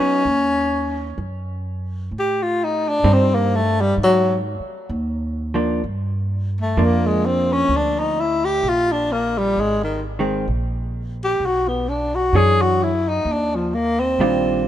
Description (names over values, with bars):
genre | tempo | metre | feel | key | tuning
jazz ballad | 65 BPM | 4/4 | swing 68% on 8ths | unclear | A4 = 440 Hz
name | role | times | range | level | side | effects
breathy tenor saxophone | melody | 0.0-14.7 s | Eb3 to G#4 | -18 LUFS | left 1 dB | none
vintage hollow-body jazz guitar | accompaniment | 0.0-14.7 s | Eb3 to C#5 | -22 LUFS | right 2 dB | none
upright bass | bass | 0.3-14.7 s | Ab1 to A2 | -24 LUFS | right 1 dB | none
room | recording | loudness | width
light reverb | minimal, uncompressed stereo recording | -17 LUFS | side -11 dB against mid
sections
0.0-14.7 A section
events
tenor saxophone solo 0.0-14.7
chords
0.0 Ab7(no3) (rootless); 2.1 Am7b5; 4.0 Ab5; 5.8 Gm7; 9.6 Abadd9; 11.4 E13; 13.3 Ebmaj9